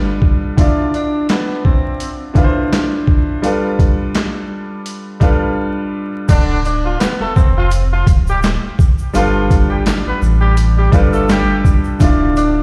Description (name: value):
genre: hip hop, boom-bap hip-hop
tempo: 84 BPM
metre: 4/4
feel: swing 55% on 16ths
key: D dorian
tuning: A4 = 445 Hz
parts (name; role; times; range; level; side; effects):
- clear upright piano; accompaniment; 0.0-12.6 s; D3 to D5; -20 LUFS; equal; high-pass filter, low-pass filter
- boom bap sampler-style drum kit; drums; 0.2-12.5 s; crash cymbal, handclaps, hi-hat, kick drum, shaker, snare drum; -16 LUFS; equal; overdrive
- growling tenor saxophone; melody; 0.9-2.2, 6.7-7.9, 12.4-12.6 s; B3 to D4; -25 LUFS; equal; high-pass filter, low-pass filter, delay
- warm horn section; stabs; 6.3-11.6 s; D3 to B4; -24 LUFS; equal; high-pass filter, low-pass filter, delay
- warm sub bass; bass; 6.3-12.6 s; D1 to A1; -18 LUFS; equal; none
- tube shaker; percussion; 6.3-12.5 s; none; -45 LUFS; equal; none
room: light reverb, small room ambience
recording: played on a big sound system in a bare room, stone room reverb, vinyl crackle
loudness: -15 LUFS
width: mono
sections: 0.0-6.3 A section; 6.3-12.6 B section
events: break 5.6-6.3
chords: 0.0 G7; 0.6 Dm7; 3.4 G7; 6.3 Dm; 9.1 G7; 12.0 Dm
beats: | 0.57 1.29 2.00 2.72 | 3.43 4.15 4.86 5.58 | 6.29 7.00 7.72 8.43 | 9.15 9.86 10.57 11.29 | 12.00